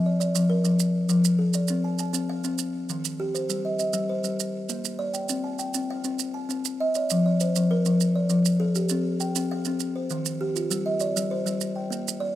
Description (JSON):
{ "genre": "southern african traditional, mbira-style interlocking cycle", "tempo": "133 BPM (dotted quarters)", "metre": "12/8", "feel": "straight", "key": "C equiheptatonic", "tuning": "A4 = 439 Hz", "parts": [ { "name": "buzzing kalimba", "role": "arpeggios", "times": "0.0-12.4 s", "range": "Eb3+43c to A5-43c", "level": "-23 LUFS", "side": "left 1 dB", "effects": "none" }, { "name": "maracas", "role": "percussion", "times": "0.2-12.2 s", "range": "none", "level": "-30 LUFS", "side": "right 13 dB", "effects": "none" } ], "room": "small room ambience", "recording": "rough home demo mix", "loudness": "-23 LUFS", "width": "side -13 dB against mid", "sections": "0.0-5.3 A section; 5.3-12.4 B section", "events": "none", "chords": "0.0 F; 1.7 F6/C; 2.6 Eb; 3.5 Cm/G; 4.4 Bb; 5.3 Cm; 7.1 F; 8.9 C5; 9.8 Eb; 10.7 G5; 11.6 Bb" }